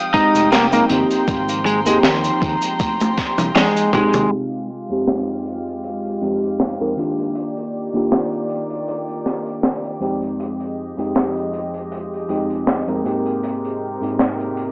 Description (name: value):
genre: vaporwave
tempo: 79 BPM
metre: 4/4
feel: swing 55% on 16ths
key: F dorian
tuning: A4 = 440 Hz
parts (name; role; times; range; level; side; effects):
- mellow FM electric piano; accompaniment; 0.0-14.7 s; F2 to Bb4; -22 LUFS; equal; phaser, wide subtle chorus, cassette tape, tape echo, plate reverb
- warm chamber string section; sustained chords; 0.0-14.7 s; C3 to Eb6; -25 LUFS; equal; vintage 12-bit sampler grit, low-pass filter, cassette tape
- lightly driven lead guitar; melody; 0.1-4.3 s; Ab3 to Eb4; -18 LUFS; equal; cassette tape, tape echo
- crisp fusion drum kit; drums; 0.1-14.7 s; cabasa, hi-hat, snare drum, toms; -21 LUFS; equal; cassette tape
- electronic kick drum; drums; 0.1-4.1 s; none; -23 LUFS; equal; overdrive, cassette tape
- fingered electric bass; bass; 0.3-4.3 s; F1 to Ab2; -24 LUFS; equal; none
room: moderate studio reverb, RT60 0.6 s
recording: home recording on cassette, low-pass filter, small speaker sound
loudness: -17 LUFS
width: side -30 dB against mid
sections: 0.0-4.3 A section; 4.3-14.7 B section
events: drum fill 2.8-4.3; band accent 3.6-3.9; filter sweep 4.3-14.7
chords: 0.0 Fm9; 0.9 Abmaj9; 4.3 Fm9